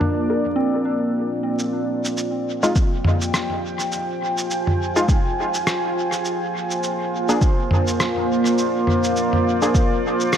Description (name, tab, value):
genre	ambient dub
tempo	103 BPM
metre	4/4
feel	swing 57% on 16ths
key	F dorian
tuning	A4 = 445 Hz
part	deep dark ambient pad	sustained chords	0.0-10.4 s	Bb3 to Ab5	-21 LUFS	equal	chorus, built-in reverb
part	soft synth bell	arpeggios	0.0-2.2 s	C4 to D4	-25 LUFS	right 2 dB	chorus, tape echo
part	lo-fi sampler-style drum kit	drums	0.0-10.4 s	rim click, shaker, toms	-24 LUFS	equal	overdrive, dub echo
part	filtered dub chord stab	stabs	0.3-9.7 s	Ab3 to Bb4	-25 LUFS	left 1 dB	chorus, dub echo
part	electronic kick drum	drums	2.8-9.9 s	none	-18 LUFS	equal	overdrive
room	moderate lush hall reverb, RT60 1.8 s, digital ambience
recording	vinyl crackle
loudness	-18 LUFS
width	side -9 dB against mid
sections	0.0-1.6 A section; 1.6-10.4 B section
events	filter sweep on drum 0.0-1.6; filter sweep on synth bell 0.0-1.6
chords	0.0 Bb7; 1.6 Fm; 6.3 Bb7